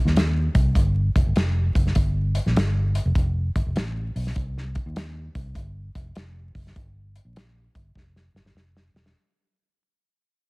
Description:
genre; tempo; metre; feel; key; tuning
uptempo 1960s-style soul; 100 BPM; 4/4; swing 66% on 8ths; unclear; A4 = 440 Hz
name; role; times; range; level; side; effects
vintage muted fingered electric bass; bass; 0.1-9.1 s; E1 to Eb2; -24 LUFS; equal; none
warm soul drum kit; drums; 0.1-9.2 s; hi-hat, kick drum, snare drum; -24 LUFS; equal; none
room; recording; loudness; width
little or no reverb; heavily compressed radio sound, vinyl crackle; -20 LUFS; side -28 dB against mid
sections
0.0-9.2 A section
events
fade-out 0.0-9.2; drum fill 8.0-9.2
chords
none

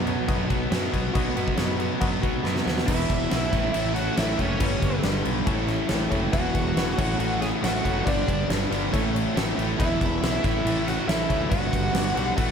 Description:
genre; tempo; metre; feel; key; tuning
classic rock; 139 BPM; 4/4; straight; unclear; A4 = 439 Hz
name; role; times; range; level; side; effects
reed electric piano; accompaniment; 0.0-12.5 s; A3 to B5; -35 LUFS; left 6 dB; fast tremolo, slapback echo
overdriven electric guitar; riff; 0.0-12.5 s; E2 to B3; -33 LUFS; equal; none
overdriven semi-hollow guitar; riff; 0.0-12.5 s; E2 to B3; -31 LUFS; left 9 dB; slapback echo
overdriven semi-hollow guitar; riff; 0.0-12.5 s; E2 to B3; -30 LUFS; right 10 dB; none
fuzz fingered electric bass; bass; 0.0-12.5 s; E1 to F#2; -30 LUFS; equal; overdrive
huge arena drum kit; drums; 0.1-12.5 s; crash cymbal, kick drum, snare drum; -26 LUFS; equal; none
octave-fuzz lead guitar; melody; 2.9-12.5 s; C#4 to G#4; -29 LUFS; equal; distortion
biting lead guitar; second line; 2.9-12.5 s; C#5 to G#5; -36 LUFS; right 1 dB; none
room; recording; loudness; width
moderate lush hall reverb, RT60 1.6 s, studio reverb; big arena sound; -22 LUFS; side -7 dB against mid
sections
0.0-2.9 A section; 2.9-12.5 B section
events
reed electric piano fill 2.2-2.9; drum fill 2.4-2.9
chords
0.0 B; 2.9 E; 3.5 A; 4.6 G; 5.5 A; 6.3 E; 7.0 A; 8.1 G; 8.9 A; 9.8 E; 10.4 A; 11.5 G

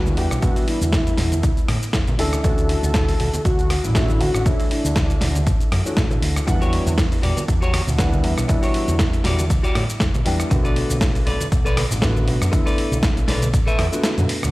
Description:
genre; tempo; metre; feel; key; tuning
nu-disco, nu disco; 119 BPM; 4/4; swing 55% on 16ths; E dorian; A4 = 437 Hz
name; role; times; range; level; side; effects
wide unison lead; melody; 0.0-6.2 s; D4 to A4; -27 LUFS; equal; lush chorus, cassette tape, digital delay
dark baby grand piano; accompaniment; 0.0-14.5 s; D3 to F#5; -27 LUFS; left 1 dB; sidechain pumping, low-pass filter, digital delay
picked electric bass with an envelope filter; bass; 0.0-14.5 s; E1 to A2; -22 LUFS; equal; none
dusty soul sampler-style drum kit; drums; 0.1-14.5 s; hi-hat, rim click, shaker, snare drum; -26 LUFS; equal; none
congas; percussion; 0.1-14.5 s; none; -29 LUFS; right 2 dB; none
electronic kick drum; drums; 0.4-13.6 s; none; -21 LUFS; equal; none
clean electric guitar; riff; 6.5-14.5 s; F#4 to E5; -27 LUFS; left 1 dB; lush chorus, digital delay
room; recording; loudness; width
digital ambience; played on a big sound system in a bare room, stone room reverb; -17 LUFS; side -19 dB against mid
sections
0.0-14.5 A section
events
kick drops out 14.0-14.5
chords
0.0 Em9; 2.2 Dmaj9; 6.5 Em9; 10.5 Bm7

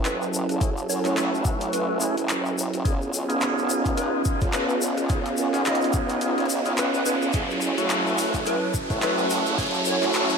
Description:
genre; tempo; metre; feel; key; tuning
glitch hop; 107 BPM; 4/4; swing 57% on 16ths; F# dorian; A4 = 439 Hz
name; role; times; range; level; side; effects
warm analog pad; sustained chords; 0.0-10.4 s; F#3 to A4; -28 LUFS; right 1 dB; chorus, sidechain pumping
formant-sweep wobble bass; bass; 0.0-10.4 s; E1 to F#2; -30 LUFS; equal; chorus, high-pass filter
riser; sound effects; 2.0-10.4 s; none; -32 LUFS; equal; none
warbly tape-like pad; texture; 0.0-10.4 s; C#4 to A5; -32 LUFS; right 3 dB; chorus, built-in reverb, sidechain pumping
plucky unison lead; melody; 0.1-10.1 s; B4 to D#5; -32 LUFS; equal; vintage 12-bit sampler grit, tape echo
drum and bass drum kit; drums; 0.1-10.3 s; handclaps, hi-hat, rim click; -30 LUFS; equal; overdrive, studio reverb
tube shaker; percussion; 0.1-10.4 s; none; -34 LUFS; left 5 dB; none
tonewheel organ; stabs; 0.6-10.4 s; A3 to G#4; -29 LUFS; equal; overdrive, slow rotary speaker, sidechain pumping, low-pass filter, tape echo
electronic kick drum; drums; 0.6-9.7 s; none; -26 LUFS; equal; overdrive, studio reverb
room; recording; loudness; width
wet plate reverb, RT60 1.3 s, digital ambience; dreamy mix soaked in reverb, high-pass filter; -21 LUFS; side -5 dB against mid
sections
0.0-10.4 A section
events
build-up 0.0-10.4; filter sweep on tonewheel organ 0.0-10.4; filter sweep on digital synth lead 0.0-10.4; filter sweep 0.0-10.4; riser 2.0-10.4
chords
0.0 F#m7; 2.9 C#9/F#; 7.3 F#m7

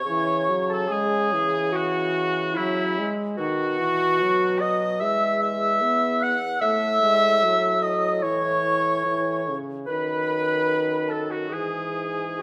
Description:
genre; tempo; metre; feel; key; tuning
classical, slow romantic movement for wind quintet; 73 BPM; 4/4; rubato; C# minor; A4 = 438 Hz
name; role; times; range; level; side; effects
concert flute; melody; 0.0-12.4 s; E5 to F#6; -31 LUFS; equal; none
warm oboe; second line; 0.0-12.4 s; E4 to F#5; -30 LUFS; equal; none
warm clarinet; accompaniment; 0.0-12.4 s; E4 to F#5; -27 LUFS; equal; none
dark bassoon; bass; 0.0-12.4 s; E2 to C#3; -34 LUFS; equal; none
clear French horn; accompaniment; 0.1-12.4 s; C#3 to B3; -32 LUFS; equal; none
room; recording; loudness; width
moderate scoring stage reverb, RT60 1.6 s; close, detailed microphones; -23 LUFS; mono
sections
0.0-12.4 A section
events
none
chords
0.1 C#m; 3.4 B; 5.0 E; 6.6 Amaj7; 9.9 B7/F#; 11.5 E/G#

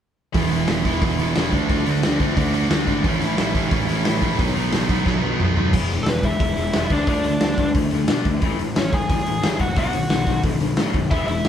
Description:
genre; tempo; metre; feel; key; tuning
punk rock; 178 BPM; 4/4; straight; E major; A4 = 436 Hz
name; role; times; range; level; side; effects
sludgy distorted guitar; riff; 0.3-5.7 s; E2 to D4; -23 LUFS; right 7 dB; overdrive
tight distorted guitar; riff; 0.3-11.5 s; A2 to F#4; -24 LUFS; left 4 dB; distortion
fuzz picked electric bass; bass; 0.3-11.5 s; E1 to B2; -26 LUFS; equal; overdrive
raw garage drum kit; drums; 0.3-11.5 s; crash cymbal, hi-hat, kick drum, snare drum, toms; -22 LUFS; equal; none
biting lead guitar; melody; 6.0-11.5 s; B3 to G#5; -25 LUFS; equal; overdrive
room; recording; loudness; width
moderate studio reverb, RT60 0.8 s; band playing live in one room; -18 LUFS; side -9 dB against mid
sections
0.3-5.7 A section; 5.7-11.5 B section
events
drum fill 5.1-5.7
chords
0.3 E; 1.5 D; 3.0 A; 4.4 B; 5.7 E; 6.9 D5; 8.4 A; 9.8 B

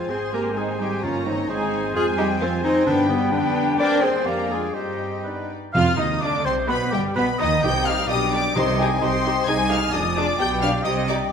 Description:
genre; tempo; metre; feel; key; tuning
quick classical-period movement for symphony orchestra; 130 BPM; 2/4; rubato; C minor; A4 = 440 Hz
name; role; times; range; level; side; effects
warm studio violin section; melody; 0.0-11.2 s; B4 to Ab6; -29 LUFS; left 4 dB; none
dark studio violin section; second line; 0.0-11.3 s; G4 to Bb5; -30 LUFS; left 4 dB; none
flute section; second line; 0.0-11.3 s; D5 to F6; -30 LUFS; left 4 dB; none
warm clarinet; second line; 0.0-11.3 s; B3 to F5; -27 LUFS; left 2 dB; none
warm oboe; second line; 0.0-11.3 s; G4 to F5; -31 LUFS; right 1 dB; none
warm studio viola section; accompaniment; 0.0-11.2 s; G3 to Bb4; -27 LUFS; right 2 dB; none
mellow French horn section; sustained chords; 0.0-11.2 s; G3 to F4; -30 LUFS; left 4 dB; none
dark studio double bass section; bass; 0.0-11.3 s; F1 to G2; -29 LUFS; right 4 dB; none
warm studio cello section; bass; 0.0-11.3 s; F2 to D4; -29 LUFS; right 4 dB; none
timpani; percussion; 1.0-3.3, 5.7-9.2 s; G2 to C3; -30 LUFS; right 1 dB; none
room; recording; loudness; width
wet concert hall reverb, RT60 1.9 s; none; -19 LUFS; side -7 dB against mid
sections
0.0-5.8 A section; 5.8-11.3 B section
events
none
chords
0.1 Ab; 1.0 Eb7/G; 1.5 Ab; 1.9 Fm; 2.9 G; 3.3 G7/F; 3.8 Cm/Eb; 4.3 Ddim/F; 4.8 Cm/G; 5.3 G; 5.8 Ebsus2; 6.2 Csus2; 6.7 G; 7.6 Cm; 8.1 G/B; 8.6 Cm; 9.5 Ab/C; 9.9 Ddim/F; 10.4 G/B; 10.9 Cm

